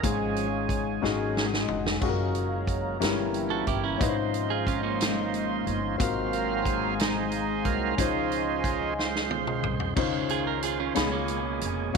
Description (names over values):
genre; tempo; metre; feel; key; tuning
slow gospel; 60 BPM (dotted quarters); 6/8; straight; Db major; A4 = 440 Hz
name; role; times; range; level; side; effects
warm concert grand piano; accompaniment; 0.0-12.0 s; G2 to Cb6; -30 LUFS; left 11 dB; none
hollow soft pad; sustained chords; 0.0-10.0 s; Db5 to C6; -36 LUFS; equal; chorus
overdriven tonewheel organ; sustained chords; 0.0-12.0 s; Cb3 to F5; -31 LUFS; right 11 dB; slow rotary speaker
upright bass; bass; 0.0-12.0 s; F1 to Db2; -35 LUFS; equal; none
swinging big-band drum kit; drums; 0.0-12.0 s; crash cymbal, hi-hat, kick drum, snare drum, splash cymbal, toms; -30 LUFS; right 1 dB; none
clean electric guitar; second line; 3.5-5.8, 10.3-11.9 s; Bb3 to Bb4; -31 LUFS; right 13 dB; none
room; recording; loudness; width
light reverb; 1960s-style stereo with parts hard left and right; -25 LUFS; side -5 dB against mid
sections
0.0-10.0 A section; 10.0-12.0 B section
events
tonewheel organ solo 0.0-10.0; drum fill 1.0-2.0, 9.0-10.0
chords
0.0 Db/Ab; 1.0 Ab7sus4; 2.0 Gbmaj7; 3.0 Gdim7; 4.0 Dbmaj9/Ab; 6.0 Ab13; 8.0 Dbmaj9; 11.0 Db7